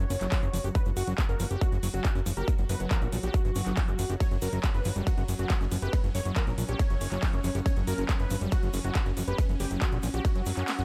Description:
psychedelic trance; 139 BPM; 4/4; straight; F# major; A4 = 440 Hz
unison lead; melody; 0.0-10.8 s; F#4 to C#5; -40 LUFS; equal; phaser, sidechain pumping, delay
swarming drone; sustained chords; 0.0-10.8 s; F#3 to F#4; -42 LUFS; equal; built-in reverb, phaser, sidechain pumping
overdriven acid bass; riff; 0.0-10.8 s; E#3 to G4; -40 LUFS; equal; distortion, sidechain pumping, digital delay
fat analog bass; bass; 0.0-10.8 s; F#1 to F#2; -33 LUFS; equal
big-room dance drum kit; drums; 0.0-10.8 s; handclaps, hi-hat, ride cymbal; -40 LUFS; equal
egg shaker; percussion; 0.1-10.8 s; -50 LUFS; equal
electronic kick drum; drums; 0.3-10.3 s; -29 LUFS; equal
little or no reverb; dark, warm production; -28 LUFS; mono
0.0-10.8 A section
kick drops out 10.7
0.0 F#5
0.32 | 0.75 1.18 1.61 2.05 | 2.48 2.91 3.34 3.77 | 4.20 4.64 5.07 5.50 | 5.93 6.36 6.79 7.23 | 7.66 8.09 8.52 8.95 | 9.38 9.82 10.25 10.68

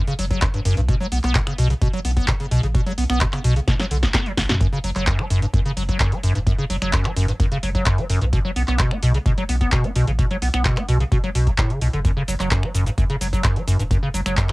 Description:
acid house; 129 BPM; 4/4; straight; F# phrygian; A4 = 440 Hz
liquid acid bass; riff; 0.0-14.5 s; F#2 to B3; -22 LUFS; equal; wide subtle chorus, sidechain pumping, cassette tape, analog delay
electro analog drum machine; drums; 0.1-14.5 s; finger snaps, handclaps, hi-hat, shaker, snare drum; -26 LUFS; equal
warm sub bass; bass; 0.2-14.4 s; E1 to F#2; -23 LUFS; equal; tube saturation, sidechain pumping
electronic kick drum; drums; 0.3-14.5 s; -21 LUFS; equal
light reverb; home recording on cassette; -18 LUFS; side -22 dB against mid
0.0-14.5 A section
drum fill 3.7-4.6
0.0 F#5; 0.9 N.C.; 4.6 F#5; 8.3 N.C.; 12.0 F#5
0.42 | 0.89 1.35 1.82 2.28 | 2.75 3.21 3.68 4.14 | 4.61 5.07 5.54 6.00 | 6.47 6.93 7.40 7.86 | 8.33 8.79 9.26 9.72 | 10.19 10.65 11.12 11.58 | 12.05 12.51 12.98 13.44 | 13.91 14.38

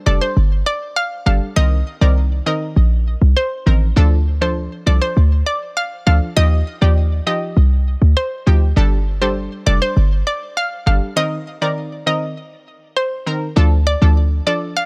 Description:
dancehall; 100 BPM; 4/4; straight; D phrygian; A4 = 440 Hz
analog pluck; accompaniment; 0.0-14.7 s; Eb3 to Bb4; -25 LUFS; equal; chorus
hollow square pluck; melody; 0.1-14.9 s; C5 to F5; -23 LUFS; equal; chorus
short 808-style bass; bass; 0.1-14.4 s; F1 to Eb2; -16 LUFS; equal
little or no reverb; -17 LUFS; mono
0.0-13.6 A section; 13.6-14.9 B section
break 11.2-13.6
0.0 Gsus2; 1.6 Cm7; 4.0 Dm; 6.4 Ebadd9; 8.8 Gsus2; 11.2 Cm7; 13.6 Dm
0.37 0.97 | 1.57 2.17 2.77 3.37 | 3.97 4.57 5.17 5.77 | 6.37 6.97 7.57 8.17 | 8.77 9.37 9.97 10.57 | 11.17 11.77 12.37 12.97 | 13.57 14.17 14.77

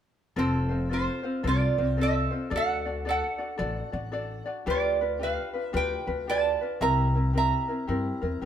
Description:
Hawaiian; 112 BPM; 4/4; swing 64% on 8ths; F major; A4 = 439 Hz
lap resonator guitar; melody; 0.4-8.5 s; C4 to Bb5; -28 LUFS; right 4 dB
ukulele; accompaniment; 0.4-8.5 s; C4 to D5; -30 LUFS; left 3 dB
upright bass; bass; 0.4-8.5 s; F1 to G2; -30 LUFS; left 1 dB
wet stone room reverb, RT60 1.2 s; band playing live in one room; -25 LUFS; side -9 dB against mid
0.4-8.5 A section
0.4 F; 2.5 D; 4.7 G7/D; 6.8 C7
| 0.36 0.90 1.44 1.97 | 2.51 3.05 3.58 4.12 | 4.66 5.19 5.73 6.27 | 6.80 7.34 7.88 8.42

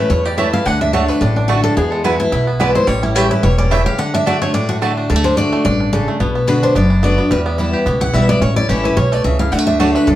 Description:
bluegrass; 217 BPM; 4/4; swing 54% on 8ths; D major; A4 = 439 Hz
bluegrass banjo; melody; 0.0-10.2 s; E3 to G4; -23 LUFS; right 3 dB; plate reverb
picked steel-string acoustic guitar; melody; 0.0-10.2 s; D4 to F#5; -19 LUFS; left 1 dB
picked steel-string acoustic guitar; accompaniment; 0.0-10.2 s; E2 to F#4; -17 LUFS; left 1 dB
upright bass; bass; 0.1-10.2 s; E1 to E2; -19 LUFS; equal
mandolin; stabs; 0.4-4.9, 9.8-9.9 s; A3 to A5; -20 LUFS; right 5 dB
wet studio reverb, RT60 0.5 s; heard from further back in the room; -13 LUFS; side -13 dB against mid
0.0-5.1 A section; 5.1-10.2 A section
break 4.0-5.1
0.0 A; 0.7 D; 1.8 E; 2.9 A7; 4.0 D; 6.2 Bm; 7.3 Em; 8.4 A; 9.5 D
0.10 0.38 | 0.66 0.94 1.21 1.49 | 1.77 2.04 2.32 2.60 | 2.88 3.15 3.43 3.71 | 3.99 4.26 4.54 4.82 | 5.09 5.37 5.65 5.93 | 6.20 6.48 6.76 7.03 | 7.31 7.59 7.86 8.14 | 8.42 8.69 8.97 9.25 | 9.52 9.80 10.08

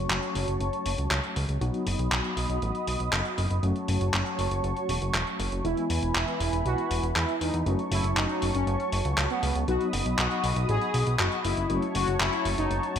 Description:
italo disco; 119 BPM; 4/4; straight; A4 = 440 Hz
warm analog pad; sustained chords; 0.0-13.0 s; E4 to D#6; -32 LUFS; equal; chorus
mellow tine electric piano; stabs; 0.0-13.0 s; E3 to F#4; -34 LUFS; left 3 dB; medium tremolo, ping-pong delay
fat analog bass; bass; 0.0-13.0 s; E1 to E2; -29 LUFS; equal; tube saturation
dusty soul sampler-style drum kit; drums; 0.1-13.0 s; handclaps, hi-hat; -30 LUFS; equal; studio ambience, gated reverb
analog synth brass; melody; 5.6-12.9 s; B3 to G#4; -30 LUFS; equal; chorus, ping-pong delay
moderate plate reverb, RT60 1.8 s, digital ambience; bright 1980s-style digital production; -25 LUFS; side -8 dB against mid
0.0-13.0 A section
filter sweep on analog synth pad 0.0-13.0
0.0 F#m; 1.6 B; 3.6 F#m; 5.6 E; 7.7 F#m; 9.7 B; 11.7 F#m
0.10 0.60 1.11 | 1.61 2.12 2.62 3.12 | 3.63 4.13 4.64 5.14 | 5.65 6.15 6.66 7.16 | 7.66 8.17 8.67 9.18 | 9.68 10.18 10.69 11.19 | 11.70 12.20 12.71

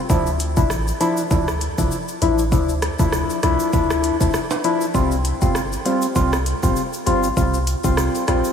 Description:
dancehall; 99 BPM; 4/4; swing 56% on 16ths; D minor; A4 = 440 Hz
percussive organ stab; accompaniment; 0.1-8.5 s; F3 to F4; -20 LUFS; left 2 dB; chorus, sidechain pumping
punchy sub bass; bass; 0.1-8.4 s; G1 to D2; -22 LUFS; equal
afro-pop drum kit; drums; 0.1-8.5 s; hi-hat, kick drum, rim click, shaker; -23 LUFS; equal
egg shaker and timbales; percussion; 0.1-8.5 s; -33 LUFS; right 6 dB
moderate huge ambient reverb, RT60 4.6 s; dreamy mix soaked in reverb; -17 LUFS; side -7 dB against mid
0.0-8.5 A section
0.1 Dmadd9; 4.9 Csus4
| 0.10 0.70 1.31 1.92 | 2.52 3.13 3.73 4.34 | 4.95 5.55 6.16 6.76 | 7.37 7.98

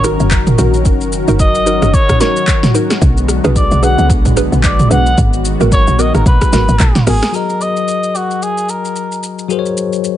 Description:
amapiano; 111 BPM; 4/4; swing 58% on 16ths; F# major; A4 = 439 Hz
trumpet with cup mute; melody; 0.0-9.2 s; F#4 to F#5; -18 LUFS; equal; tape echo
warm analog pad; sustained chords; 0.0-7.3 s; D3 to A#4; -19 LUFS; left 2 dB; chorus, sidechain pumping
hollow square pluck; stabs; 0.0-7.2 s; B3 to B4; -20 LUFS; right 3 dB; chorus, tape echo
woody log drum bass; bass; 0.0-7.2 s; F#1 to C#2; -14 LUFS; equal
deep house drum kit; drums; 0.0-10.2 s; handclaps, hi-hat, kick drum, rim click, shaker, snare drum, toms; -14 LUFS; equal; overdrive
bell-like tine electric piano; accompaniment; 7.3-10.2 s; F#3 to D#5; -18 LUFS; left 8 dB; auto-pan
little or no reverb; nothing above 10.4 kHz; -10 LUFS; side -12 dB against mid
0.0-7.3 A section; 7.3-10.2 B section
drop 0.0-7.3
0.0 F#6; 3.0 Bm6; 5.2 G#m9; 7.3 F#6
0.31 | 0.85 1.39 1.94 2.48 | 3.02 3.56 4.10 4.64 | 5.18 5.72 6.26 6.80 | 7.34 7.88 8.42 8.96 | 9.50 10.04

